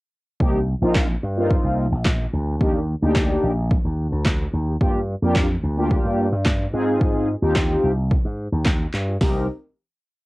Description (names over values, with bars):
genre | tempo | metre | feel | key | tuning
dance-pop | 109 BPM | 4/4 | straight | C minor | A4 = 438 Hz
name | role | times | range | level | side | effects
mellow synth brass | accompaniment | 0.4-9.5 s | Bb3 to Bb4 | -22 LUFS | equal | chorus, sidechain pumping
slap bass with an envelope filter | bass | 0.4-9.5 s | Bb1 to Ab2 | -23 LUFS | equal | sidechain pumping
punchy analog drum machine | drums | 0.4-9.3 s | handclaps, hi-hat, kick drum, snare drum | -21 LUFS | equal | overdrive
room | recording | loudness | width
light reverb | home recording on cassette | -18 LUFS | side -20 dB against mid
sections
0.4-9.2 verse; 9.2-10.3 final chord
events
none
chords
0.4 Cm7; 2.6 Ebmaj7; 4.8 Gm7; 6.7 Fm7; 9.2 Cm7